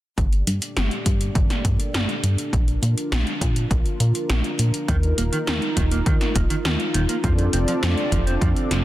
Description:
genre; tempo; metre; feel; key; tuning
synthwave; 102 BPM; 4/4; straight; G minor; A4 = 440 Hz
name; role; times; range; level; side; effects
chorused pulse-width pad; sustained chords; 0.2-8.8 s; Bb3 to D5; -27 LUFS; equal; sidechain pumping
chorused synth bass; bass; 0.2-8.8 s; Eb1 to Bb2; -21 LUFS; equal; none
80s electronic pad drums; drums; 0.2-8.8 s; hi-hat, snare drum; -27 LUFS; equal; overdrive
electronic kick drum; drums; 0.2-8.5 s; none; -22 LUFS; equal; overdrive
clean electric guitar; riff; 4.9-8.8 s; Eb3 to C4; -29 LUFS; right 3 dB; lush chorus, digital delay
room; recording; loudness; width
light reverb, digital ambience; dense, heavily limited modern master; -19 LUFS; side -15 dB against mid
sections
0.2-8.8 A section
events
filter sweep on analog synth bass 0.2-8.8; filter sweep on analog synth pad 0.2-8.8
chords
0.2 Gmadd9; 2.5 Bb; 4.9 Ebsus2; 7.2 F6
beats
| 0.18 0.77 1.35 1.94 | 2.53 3.12 3.71 4.30 | 4.88 5.47 6.06 6.65 | 7.24 7.83 8.41

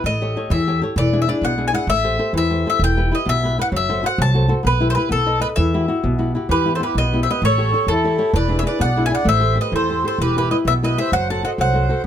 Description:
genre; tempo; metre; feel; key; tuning
italian folk, Italian serenade; 130 BPM (dotted quarters); 6/8; straight; unclear; A4 = 439 Hz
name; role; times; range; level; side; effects
mandolin; melody; 0.0-12.1 s; A4 to A5; -21 LUFS; left 2 dB; none
flamenco guitar; accompaniment; 0.0-12.1 s; B2 to D#5; -22 LUFS; left 2 dB; none
upright bass; bass; 0.0-12.1 s; E1 to E2; -20 LUFS; right 1 dB; none
accordion; second line; 6.5-12.0 s; E4 to F#5; -26 LUFS; right 10 dB; none
room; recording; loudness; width
light reverb; none; -16 LUFS; side -9 dB against mid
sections
0.0-6.5 A section; 6.5-12.1 A section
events
none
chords
0.0 A7; 1.0 E7; 1.9 Am7; 2.8 Em; 3.7 F#dim; 4.6 Em/B; 5.1 B7; 5.6 Emadd9; 6.5 Em; 7.4 A7; 8.3 E7; 9.3 Am7; 10.2 Em; 11.1 F#dim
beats
| 0.04 0.50 | 0.96 1.42 | 1.88 2.34 | 2.80 3.26 | 3.72 4.18 | 4.64 5.10 | 5.56 6.03 | 6.49 6.96 | 7.42 7.88 | 8.34 8.80 | 9.27 9.73 | 10.19 10.66 | 11.12 11.58 | 12.04

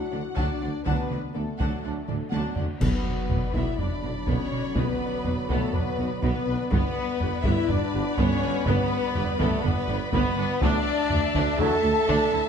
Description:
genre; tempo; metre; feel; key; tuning
cinematic, epic orchestral film score; 123 BPM; 4/4; straight; B minor; A4 = 441 Hz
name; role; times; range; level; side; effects
warm symphonic violin section; melody; 0.0-12.5 s; A4 to A5; -34 LUFS; left 6 dB; none
bright trombone section; sustained chords; 0.0-11.8 s; D3 to D4; -37 LUFS; right 4 dB; none
warm French horn section; sustained chords; 0.0-12.5 s; A3 to A4; -28 LUFS; left 2 dB; none
dark symphonic violin section; second line; 0.1-12.5 s; A4 to B5; -36 LUFS; left 2 dB; none
clear symphonic viola section; accompaniment; 0.1-12.5 s; F#3 to E5; -34 LUFS; right 1 dB; none
clear symphonic double bass section; bass; 0.1-12.4 s; G1 to D2; -33 LUFS; right 4 dB; none
mellow tuba; bass; 0.1-12.4 s; G1 to D2; -34 LUFS; right 4 dB; none
rich symphonic cello section; bass; 0.1-12.4 s; D2 to D3; -32 LUFS; right 3 dB; none
taiko ensemble; drums; 0.4-12.5 s; none; -29 LUFS; equal; none
clash cymbals and concert bass drum; percussion; 2.8-3.7 s; none; -34 LUFS; left 1 dB; none
timpani; percussion; 2.8-3.5 s; B2; -33 LUFS; left 1 dB; none
room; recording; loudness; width
wet scoring stage reverb, RT60 1.6 s; dark, warm production; -23 LUFS; side -7 dB against mid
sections
0.0-2.8 A section; 2.8-12.5 B section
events
drum fill 2.1-2.8; band accent 2.8-3.3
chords
0.0 D; 2.8 Bm; 6.7 G; 10.6 Dadd9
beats
0.37 | 0.86 1.35 1.84 2.32 | 2.81 3.30 3.79 4.28 | 4.76 5.25 5.74 6.23 | 6.71 7.20 7.69 8.18 | 8.66 9.15 9.64 10.13 | 10.62 11.10 11.59 12.08

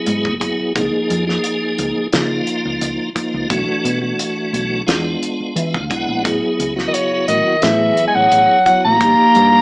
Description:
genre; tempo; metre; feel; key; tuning
electric jazz fusion; 87 BPM; 4/4; straight; unclear; A4 = 441 Hz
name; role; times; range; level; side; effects
tonewheel organ; accompaniment; 0.0-9.6 s; E3 to F#5; -19 LUFS; equal; slow rotary speaker, overdrive, chorus vibrato
hollow-body short-scale fingered electric bass; bass; 0.1-9.6 s; F#1 to E3; -22 LUFS; equal; none
damped 70s drum kit; drums; 0.1-9.5 s; hi-hat, kick drum, snare drum; -22 LUFS; equal; none
warm soprano saxophone; melody; 6.9-9.6 s; C#5 to Bb5; -12 LUFS; equal; none
breathy bass clarinet; second line; 6.9-9.6 s; C#3 to Bb3; -19 LUFS; equal; none
room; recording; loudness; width
moderate studio reverb, RT60 0.8 s; band playing live in one room, small speaker sound; -14 LUFS; side -30 dB against mid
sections
0.0-9.6 A section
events
tonewheel organ fill 5.2-6.3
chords
0.0 F#9sus4; 0.8 Db69; 3.5 Bm7; 4.9 E7b9; 6.3 A69; 9.0 Ebadd9/G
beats
0.07 | 0.76 1.44 2.13 2.82 | 3.50 4.19 4.88 5.57 | 6.25 6.94 7.63 8.32 | 9.01

